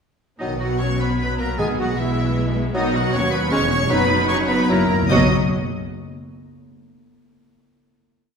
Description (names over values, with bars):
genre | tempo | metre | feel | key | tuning
quick classical-period movement for symphony orchestra | 153 BPM | 3/4 | rubato | B major | A4 = 440 Hz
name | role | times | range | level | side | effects
rich studio violin section | melody | 0.4-5.3 s | D#5 to D#6 | -28 LUFS | left 2 dB | none
bright flute section | second line | 0.4-5.3 s | D#4 to D#5 | -27 LUFS | equal | none
clear clarinet | second line | 0.4-5.3 s | B3 to F#4 | -30 LUFS | left 2 dB | none
rich studio violin section | second line | 0.4-5.3 s | D#4 to D#5 | -31 LUFS | left 2 dB | none
warm oboe | second line | 0.4-5.3 s | D#4 to D#5 | -29 LUFS | right 1 dB | none
rich studio viola section | accompaniment | 0.4-5.3 s | F#3 to F#4 | -26 LUFS | right 1 dB | none
warm bassoon | accompaniment | 0.4-5.3 s | F#3 to G#3 | -28 LUFS | equal | none
warm French horn section | sustained chords | 0.4-5.3 s | D#3 to D#4 | -27 LUFS | left 2 dB | none
clear studio double bass section | bass | 0.4-5.3 s | E1 to D#2 | -24 LUFS | right 1 dB | none
rich studio cello section | bass | 0.4-5.3 s | D#2 to B2 | -26 LUFS | right 1 dB | none
timpani | percussion | 1.6-2.1, 4.7-5.3 s | F#2 to B2 | -26 LUFS | equal | none
room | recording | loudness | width
wet scoring stage reverb, RT60 1.6 s | heard from further back in the room | -17 LUFS | side -6 dB against mid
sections
0.4-5.1 A section; 5.1-6.3 final chord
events
timpani fill 4.7-5.1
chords
0.4 B5; 1.6 E/B; 2.7 B; 3.5 C#m/E; 3.9 B/F#; 4.7 F#7; 5.1 B5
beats
| 0.41 0.80 1.20 | 1.59 1.98 2.36 | 2.75 3.13 3.51 | 3.90 4.29 4.70 | 5.11